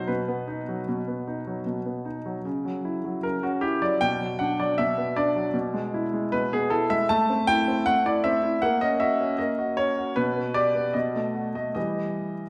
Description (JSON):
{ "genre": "classical-period piano sonatina", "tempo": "77 BPM", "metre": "4/4", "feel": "rubato", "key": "unclear", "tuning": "A4 = 440 Hz", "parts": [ { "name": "clear grand piano", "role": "solo", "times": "0.0-12.5 s", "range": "B2 to A5", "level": "-26 LUFS", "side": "equal", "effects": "none" } ], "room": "wet recital hall reverb, RT60 1.6 s", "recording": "heard from further back in the room", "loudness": "-26 LUFS", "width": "mono", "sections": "0.0-12.5 A section", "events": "none", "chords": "0.0 B; 2.5 F#5/C#; 4.0 Bm; 5.6 E/B; 7.1 Am; 8.6 F#/A#; 10.2 Bm; 10.9 B7; 11.8 Em" }